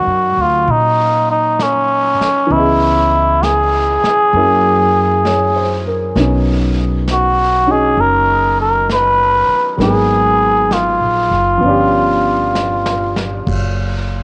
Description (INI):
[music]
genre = jazz ballad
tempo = 66 BPM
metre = 4/4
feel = swing 66% on 8ths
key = unclear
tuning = A4 = 440 Hz
[part]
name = trumpet with cup mute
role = melody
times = 0.0-13.2 s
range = Db4 to B4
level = -16 LUFS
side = equal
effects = cassette tape, analog delay, plate reverb
[part]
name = warm baby grand piano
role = accompaniment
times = 0.0-13.5 s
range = Fb3 to F5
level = -22 LUFS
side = equal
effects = plate reverb
[part]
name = upright bass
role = bass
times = 0.0-14.2 s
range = F#1 to Bb2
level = -22 LUFS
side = equal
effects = none
[part]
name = vintage brush drum kit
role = drums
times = 0.7-14.2 s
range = brushed snare drum, crash cymbal, hi-hat, kick drum, snare drum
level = -28 LUFS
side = equal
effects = vintage 12-bit sampler grit, cassette tape
[sound]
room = moderate booth ambience, RT60 0.2 s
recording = home recording on cassette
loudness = -14 LUFS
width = mono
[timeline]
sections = 0.0-14.2 A section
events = drum fill 12.6-13.5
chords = 0.0 Ebm7; 2.5 Dbm9; 4.3 Gb7; 6.2 B; 9.8 Abm9; 11.6 G7#11; 13.5 N.C.